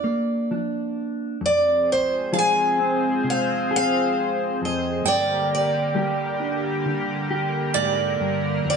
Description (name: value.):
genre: acoustic folk-pop ballad.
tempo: 66 BPM.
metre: 4/4.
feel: straight.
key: F dorian.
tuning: A4 = 439 Hz.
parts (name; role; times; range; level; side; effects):
picked old ladder-braced acoustic guitar; melody; 0.0-8.8 s; C5 to Ab5; -22 LUFS; equal; none.
mellow electric guitar; accompaniment; 0.0-8.8 s; F2 to Ab4; -26 LUFS; left 1 dB; none.
picked steel-string acoustic guitar; arpeggios; 0.0-8.8 s; D5 to G5; -26 LUFS; right 8 dB; none.
chorused pulse-width pad; sustained chords; 1.4-8.8 s; F2 to C5; -26 LUFS; left 1 dB; none.
room: moderate stone room reverb, RT60 1.2 s.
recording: band playing live in one room, nothing above 10.7 kHz.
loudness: -20 LUFS.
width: side -6 dB against mid.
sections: 0.0-1.4 A section; 1.4-8.8 B section.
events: none.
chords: 0.0 Bb; 1.4 Fm; 5.0 Gm.